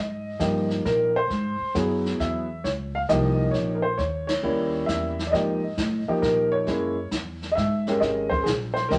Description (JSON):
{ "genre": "jazz piano trio", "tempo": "134 BPM", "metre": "3/4", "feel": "swing 67% on 8ths", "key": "Ab major", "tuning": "A4 = 441 Hz", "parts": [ { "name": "warm upright piano", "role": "melody", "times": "0.0-9.0 s", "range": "F3 to F5", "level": "-26 LUFS", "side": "equal", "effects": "none" }, { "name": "upright bass", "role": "bass", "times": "0.0-9.0 s", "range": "Ab1 to Bb2", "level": "-32 LUFS", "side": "equal", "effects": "none" }, { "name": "jazz brush drum kit", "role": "drums", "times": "0.4-9.0 s", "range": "brushed snare drum, hi-hat, kick drum, ride cymbal, snare drum", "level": "-36 LUFS", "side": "equal", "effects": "none" } ], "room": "moderate studio reverb, RT60 0.6 s", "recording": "nothing above 10.3 kHz", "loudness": "-25 LUFS", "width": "mono", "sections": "0.0-9.0 A section", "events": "band accent 4.2", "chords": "0.0 Absus2; 1.3 Ab7alt; 2.6 Db6; 4.0 Eb7b9; 5.3 Absus2; 6.7 Gb9; 8.0 Absus2" }